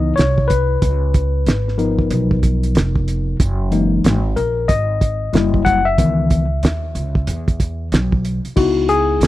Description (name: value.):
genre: hip hop, jazz-hop.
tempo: 93 BPM.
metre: 4/4.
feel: swing 63% on 16ths.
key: C# dorian.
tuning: A4 = 440 Hz.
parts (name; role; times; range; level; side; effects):
mellow tine electric piano; accompaniment; 0.0-9.3 s; D#3 to F#5; -18 LUFS; left 4 dB; overdrive.
upright bass; bass; 0.0-9.3 s; E#1 to E2; -19 LUFS; right 1 dB; none.
cloth-damped thuddy drum kit; drums; 0.2-9.3 s; crash cymbal, hi-hat, kick drum, snare drum; -17 LUFS; right 1 dB; none.
room: little or no reverb.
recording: dry, close 1970s-style studio recording.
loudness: -15 LUFS.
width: side -15 dB against mid.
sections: 0.0-8.6 A section.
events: tine electric piano solo 0.0-8.6.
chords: 0.0 C#m9; 0.8 C#13; 3.4 F#13; 5.3 F#7b9; 6.0 C#m9.